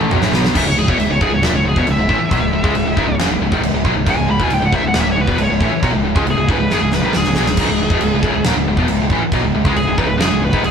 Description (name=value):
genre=heavy metal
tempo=137 BPM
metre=4/4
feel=straight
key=C# minor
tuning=A4 = 440 Hz
part: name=high-gain distorted guitar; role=riff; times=0.0-10.7 s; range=C#2 to B3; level=-17 LUFS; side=left 1 dB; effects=distortion
part: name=growling picked electric bass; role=bass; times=0.0-10.7 s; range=C#1 to C#2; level=-22 LUFS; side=equal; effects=overdrive
part: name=big rock drum kit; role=drums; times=0.0-10.7 s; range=china cymbal, crash cymbal, kick drum, snare drum, toms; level=-18 LUFS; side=right 1 dB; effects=none
part: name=high-gain lead guitar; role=melody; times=0.6-10.7 s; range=G#4 to B5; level=-20 LUFS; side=equal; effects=distortion
room=light reverb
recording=band playing live in one room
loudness=-13 LUFS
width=side -7 dB against mid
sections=0.6-10.7 A section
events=drum fill 0.0-0.6, 6.7-7.6; lead electric guitar solo 0.6-10.7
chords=0.0 A5; 0.6 C#m